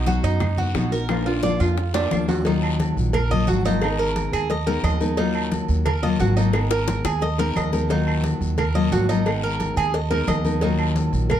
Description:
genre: latin, Cuban son and guajira.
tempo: 176 BPM.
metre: 4/4.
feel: straight.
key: Eb minor.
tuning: A4 = 440 Hz.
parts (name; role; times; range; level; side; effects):
nylon-string guitar; accompaniment; 0.0-11.3 s; B2 to Bb4; -24 LUFS; left 5 dB; none.
Cuban tres; arpeggios; 0.0-11.4 s; D4 to Eb5; -26 LUFS; right 4 dB; none.
upright bass; bass; 0.0-11.4 s; Ab1 to F#2; -24 LUFS; right 1 dB; none.
bongos and cowbell; percussion; 0.1-11.4 s; none; -30 LUFS; left 4 dB; none.
congas; percussion; 0.1-11.4 s; none; -30 LUFS; right 1 dB; none.
guiro; percussion; 0.1-11.4 s; none; -39 LUFS; left 4 dB; none.
timbales and agogo bells; percussion; 0.2-11.4 s; none; -32 LUFS; right 5 dB; none.
claves; percussion; 0.4-11.4 s; none; -36 LUFS; left 2 dB; none.
room: light reverb.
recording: dark, warm production.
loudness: -19 LUFS.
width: side -10 dB against mid.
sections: 0.0-2.5 A section; 2.5-11.4 B section.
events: drum fill 1.1-2.5, 6.5-7.9.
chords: 0.0 B; 1.1 Bb; 2.5 Ebmadd9; 3.8 Abmadd9; 5.2 Ebmadd9; 6.5 Abmadd9; 7.9 Ebmadd9; 9.3 Abmadd9; 10.6 Ebmadd9.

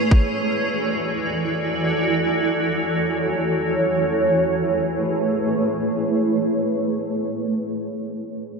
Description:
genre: hip hop.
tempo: free time.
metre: none.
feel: none.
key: A major.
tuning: A4 = 441 Hz.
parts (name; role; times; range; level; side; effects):
granular cloud pad; sustained chords; 0.0-7.5 s; E3 to D5; -20 LUFS; right 1 dB; built-in reverb, sidechain pumping, low-pass filter.
room: moderate huge ambient reverb, RT60 4.1 s.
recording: none.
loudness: -19 LUFS.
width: side -4 dB against mid.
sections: 0.0-4.3 A section; 4.3-8.2 B section.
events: filter sweep on ambient pad 0.0-4.3.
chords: 0.4 E9sus4; 4.3 Amaj9.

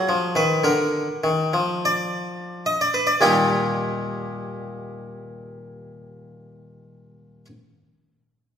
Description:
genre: classical, baroque-style suite movement for harpsichord.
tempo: 43-56 BPM.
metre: 3/4.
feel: rubato.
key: unclear.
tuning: A4 = 445 Hz.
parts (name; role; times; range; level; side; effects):
harpsichord; solo; 0.0-7.5 s; Eb2 to G5; -20 LUFS; left 1 dB; none.
room: wet recital hall reverb, RT60 1.6 s.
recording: recorded in a church or concert hall, lossy compression artefacts.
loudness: -20 LUFS.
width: side -8 dB against mid.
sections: 0.0-3.2 A section; 3.2-7.2 B section.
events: slowing down 0.0-3.2.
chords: 0.0 Bb; 3.2 Eb.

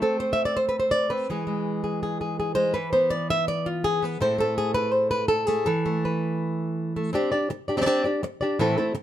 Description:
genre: flamenco.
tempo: 164 BPM.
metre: 4/4.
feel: straight.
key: unclear.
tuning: A4 = 440 Hz.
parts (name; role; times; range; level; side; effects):
flamenco guitar; solo; 0.0-9.0 s; A2 to E5; -22 LUFS; equal; none.
room: light reverb.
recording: close, detailed microphones.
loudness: -22 LUFS.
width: side -11 dB against mid.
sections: 0.0-7.1 A section; 7.1-9.0 B section.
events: nylon-string guitar solo 0.0-7.1.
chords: 0.0 Am; 1.3 E; 4.2 Am; 5.7 Esus4; 7.1 Csus2.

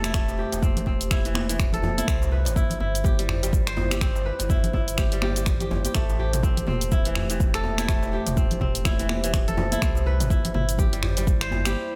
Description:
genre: afro house.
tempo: 124 BPM.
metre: 4/4.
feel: swing 59% on 16ths.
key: A minor.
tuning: A4 = 440 Hz.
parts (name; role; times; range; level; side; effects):
dark analog pad; sustained chords; 0.0-12.0 s; A3 to C5; -36 LUFS; equal; chorus, phaser, sidechain pumping.
kora; arpeggios; 0.0-12.0 s; E3 to C5; -33 LUFS; equal; sidechain pumping, low-pass filter, tape echo.
warm sub bass; bass; 0.0-11.8 s; E1 to C2; -30 LUFS; equal; sidechain pumping.
deep house drum kit; drums; 0.0-11.7 s; cabasa, finger snaps, hi-hat, toms; -32 LUFS; equal; none.
congas; percussion; 0.0-11.7 s; none; -36 LUFS; equal; none.
electronic kick drum; drums; 0.1-11.4 s; none; -26 LUFS; equal; none.
djembe; percussion; 0.1-11.6 s; none; -38 LUFS; equal; none.
room: little or no reverb.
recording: none.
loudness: -24 LUFS.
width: mono.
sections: 0.0-12.0 A section.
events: break 11.8.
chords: 0.0 Am7; 2.1 Cmaj7; 6.0 Am7; 9.8 Cmaj7.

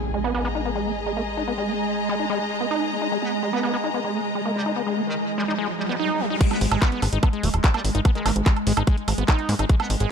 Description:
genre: psychedelic trance.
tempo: 146 BPM.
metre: 4/4.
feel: straight.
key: G# minor.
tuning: A4 = 440 Hz.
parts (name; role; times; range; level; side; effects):
evolving wavetable pad; sustained chords; 0.2-10.1 s; G#3; -29 LUFS; right 1 dB; ensemble chorus, built-in reverb, sidechain pumping.
impact and riser; sound effects; 0.0-6.4 s; none; -31 LUFS; equal; none.
dark studio string section; texture; 0.0-6.4 s; G#4 to A#5; -29 LUFS; left 2 dB; sidechain pumping.
overdriven acid bass; riff; 0.1-10.1 s; G#3 to D#4; -27 LUFS; moving between left 5 dB and right 7 dB; auto-pan, sidechain pumping, digital delay.
metallic wobble bass; second line; 3.2-9.9 s; D#3 to B3; -35 LUFS; right 2 dB; chorus, sidechain pumping, high-pass filter, digital delay.
electronic kick drum; drums; 6.4-9.8 s; none; -18 LUFS; equal; none.
garage drum kit; drums; 6.4-10.1 s; crash cymbal, handclaps, hi-hat, woodblock; -27 LUFS; right 3 dB; none.
plucky analog bass; bass; 6.6-10.1 s; D#1 to G#2; -22 LUFS; equal; none.
room: light reverb, digital ambience.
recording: none.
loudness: -21 LUFS.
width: side -7 dB against mid.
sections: 0.0-6.4 A section; 6.4-10.1 B section.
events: impact 0.0-1.5; filter sweep on ambient pad 0.0-6.4; riser 4.6-6.4; drop 6.4-10.1.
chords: 0.0 G#5.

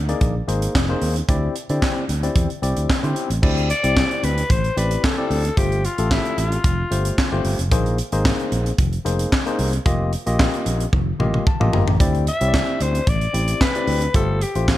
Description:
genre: early-eighties boogie funk.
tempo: 112 BPM.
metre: 4/4.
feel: straight.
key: unclear.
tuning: A4 = 442 Hz.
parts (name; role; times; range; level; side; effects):
fingered electric bass; bass; 0.0-14.7 s; F1 to D3; -22 LUFS; equal; none.
barky tine electric piano; accompaniment; 0.1-14.8 s; A3 to Bb5; -25 LUFS; left 3 dB; medium stereo tremolo.
tight funk drum kit; drums; 0.1-14.8 s; crash cymbal, handclaps, hi-hat, kick drum, snare drum, toms; -21 LUFS; equal; gated reverb.
growling alto saxophone; melody; 3.7-7.5, 12.3-14.8 s; E4 to E5; -24 LUFS; left 2 dB; none.
room: small room ambience.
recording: none.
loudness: -17 LUFS.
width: side -14 dB against mid.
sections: 0.0-3.4 A section; 3.4-14.8 B section.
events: drum fill 10.9-12.0; tine electric piano fill 10.9-12.0.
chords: 0.0 Bb9sus4; 1.3 D9sus4; 5.6 G9sus4; 7.7 Bb9sus4; 9.9 F9sus4; 12.0 D9sus4; 14.1 G9sus4.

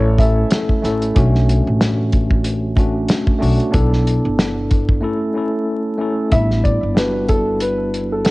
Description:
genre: hip hop, boom-bap hip-hop.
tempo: 93 BPM.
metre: 4/4.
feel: swing 57% on 16ths.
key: unclear.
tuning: A4 = 439 Hz.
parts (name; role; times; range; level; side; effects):
dark upright piano; melody; 0.0-1.1, 6.3-8.3 s; A4 to E5; -21 LUFS; equal; high-pass filter, low-pass filter, tape echo.
tine electric piano; accompaniment; 0.0-8.3 s; G3 to A4; -20 LUFS; equal; medium stereo tremolo, high-pass filter, low-pass filter, cassette tape.
upright bass; bass; 0.0-8.2 s; G1 to B1; -18 LUFS; equal; none.
warm soul drum kit; drums; 0.2-8.3 s; hi-hat, kick drum, snare drum; -17 LUFS; equal; cassette tape.
room: little or no reverb.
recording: home recording on cassette, vinyl crackle, nothing above 10.5 kHz.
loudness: -14 LUFS.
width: side -21 dB against mid.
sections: 0.0-6.3 A section; 6.3-8.3 B section.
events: break 5.0-6.3.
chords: 0.0 A; 1.2 Bm7; 3.7 G6; 5.0 A; 6.3 A7sus4.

